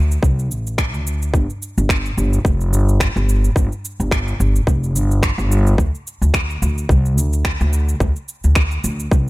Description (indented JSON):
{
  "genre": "organic downtempo",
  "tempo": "108 BPM",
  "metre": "4/4",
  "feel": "swing 55% on 16ths",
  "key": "unclear",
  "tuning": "A4 = 441 Hz",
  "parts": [
    { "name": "upright bass", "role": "bass", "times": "0.0-9.3 s", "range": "F1 to D2", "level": "-17 LUFS", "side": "equal", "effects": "sidechain pumping" },
    { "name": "electronic shaker and finger snaps", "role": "drums", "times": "0.1-9.2 s", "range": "none", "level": "-25 LUFS", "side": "right 1 dB", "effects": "overdrive" },
    { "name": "electronic kick drum", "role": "drums", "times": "0.2-9.2 s", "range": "none", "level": "-17 LUFS", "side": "equal", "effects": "overdrive" }
  ],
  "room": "little or no reverb",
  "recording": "none",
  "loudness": "-15 LUFS",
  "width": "side -20 dB against mid",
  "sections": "0.0-9.3 A section",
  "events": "none",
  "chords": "none",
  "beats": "0.23 0.78 | 1.34 1.90 2.45 3.01 | 3.56 4.12 4.67 5.23 | 5.78 6.34 6.89 7.45 | 8.01 8.56 9.12"
}